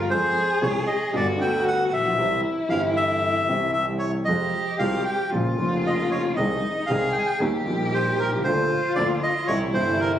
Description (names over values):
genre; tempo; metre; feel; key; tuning
tango; 116 BPM; 4/4; rubato; F minor; A4 = 440 Hz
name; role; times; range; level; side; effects
warm cello; second line; 0.0-10.2 s; Eb4 to Ab4; -27 LUFS; left 2 dB; none
warm concert grand piano; accompaniment; 0.0-10.2 s; F1 to B4; -26 LUFS; equal; none
clear double bass; bass; 0.0-10.2 s; F1 to F2; -30 LUFS; right 2 dB; none
bandoneon; melody; 0.1-10.1 s; Bb4 to Ab5; -24 LUFS; equal; none
room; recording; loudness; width
moderate large studio reverb, RT60 1.2 s; recorded on a phone in the room, club reverb, compression; -21 LUFS; side -10 dB against mid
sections
0.0-10.2 A section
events
none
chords
0.1 Fm; 1.1 G; 2.2 C; 4.3 Fm; 5.3 Bbm; 6.4 Ab/C; 7.4 Eb; 8.5 Bb/D; 9.5 C